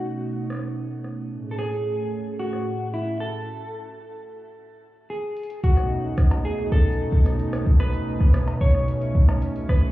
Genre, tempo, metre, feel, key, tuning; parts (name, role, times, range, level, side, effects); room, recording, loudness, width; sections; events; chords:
IDM; 111 BPM; 4/4; straight; A4 = 442 Hz
clean electric guitar; melody; 0.0-9.9 s; E4 to C#5; -30 LUFS; left 1 dB; wide subtle chorus, tape echo, shimmer reverb
warm analog pad; sustained chords; 0.0-9.9 s; A2 to G#4; -27 LUFS; right 1 dB; chorus, shimmer reverb
booming analog drum machine; drums; 0.5-9.8 s; cowbell, hi-hat, rim click; -37 LUFS; equal; low-pass filter on hats, low-pass filter on snare, low-pass filter on perc, low-pass filter on room
electronic kick drum; drums; 5.6-9.8 s; -18 LUFS; equal
light reverb, digital ambience; heard muffled through a wall, club reverb, EQ; -21 LUFS; side -16 dB against mid
0.0-5.6 A section; 5.6-9.9 B section
filter sweep on analog synth pad 0.0-5.6; break 3.5-5.6; drum fill 5.4
0.0 B9; 1.3 Amaj7; 5.6 B9